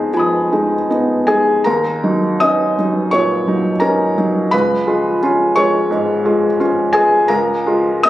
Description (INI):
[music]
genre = neoclassical minimalist piano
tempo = 76-88 BPM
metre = 4/4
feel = rubato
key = Eb minor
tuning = A4 = 442 Hz
[part]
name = felt-muted upright piano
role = solo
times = 0.0-8.1 s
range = Db2 to Eb6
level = -13 LUFS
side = equal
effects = none
[sound]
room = moderate recital hall reverb, RT60 1.8 s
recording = recorded on a phone in the room, club reverb, compression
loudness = -13 LUFS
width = side -14 dB against mid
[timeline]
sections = 0.0-1.7 A section; 1.7-8.1 A section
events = none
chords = 0.0 Fm7b5; 1.7 Ebm7; 4.5 Db7; 7.3 Bbm7/Db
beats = 0.13 0.90 | 1.66 2.42 3.14 3.84 | 4.53 5.22 5.92 6.60 | 7.30 8.05